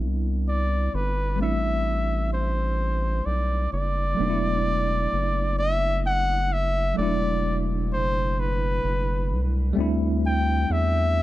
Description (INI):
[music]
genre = slow six-eight R&B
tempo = 43 BPM (dotted quarters)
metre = 6/8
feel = straight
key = E minor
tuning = A4 = 440 Hz
[part]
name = tine electric piano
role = accompaniment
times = 0.0-11.2 s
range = B2 to E4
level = -29 LUFS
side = equal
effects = medium stereo tremolo
[part]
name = round analog bass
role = bass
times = 0.0-11.2 s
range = E1 to E2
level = -25 LUFS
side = equal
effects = none
[part]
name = clear flugelhorn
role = melody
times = 0.5-11.2 s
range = B4 to G5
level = -26 LUFS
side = left 1 dB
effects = none
[sound]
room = studio reverb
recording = none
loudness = -22 LUFS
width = side -15 dB against mid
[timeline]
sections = 0.0-4.2 A section; 4.2-11.2 B section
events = none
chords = 0.0 Am11; 4.2 E9sus4; 9.8 D9sus4